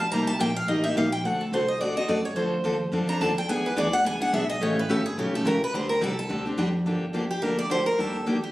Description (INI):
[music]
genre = acoustic string swing (jazz manouche)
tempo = 214 BPM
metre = 4/4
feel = swing 57% on 8ths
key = G minor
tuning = A4 = 439 Hz
[part]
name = picked steel-string acoustic guitar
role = melody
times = 0.0-8.5 s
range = G4 to Bb5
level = -27 LUFS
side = equal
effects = none
[part]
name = picked steel-string acoustic guitar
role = accompaniment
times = 0.1-8.4 s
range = C3 to A4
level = -26 LUFS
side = left 1 dB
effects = none
[part]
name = upright bass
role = bass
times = 0.1-8.4 s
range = G1 to F#2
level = -32 LUFS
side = equal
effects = none
[sound]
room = moderate small room reverb, RT60 0.5 s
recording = recorded on a phone in the room, studio reverb, compression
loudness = -23 LUFS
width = side -16 dB against mid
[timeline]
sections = 0.0-6.9 A section; 6.9-8.5 B section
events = steel-string acoustic guitar solo 0.0-6.9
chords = 0.1 Cm7; 1.2 D7; 2.4 Dm7; 3.5 E7; 4.6 A7; 5.7 D7sus4; 6.9 Gm7; 8.0 Ebmaj7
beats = | 0.12 0.40 0.68 0.96 | 1.24 1.52 1.80 2.08 | 2.36 2.64 2.92 3.21 | 3.49 3.77 4.05 4.33 | 4.61 4.89 5.17 5.45 | 5.73 6.01 6.29 6.57 | 6.85 7.13 7.42 7.70 | 7.98 8.26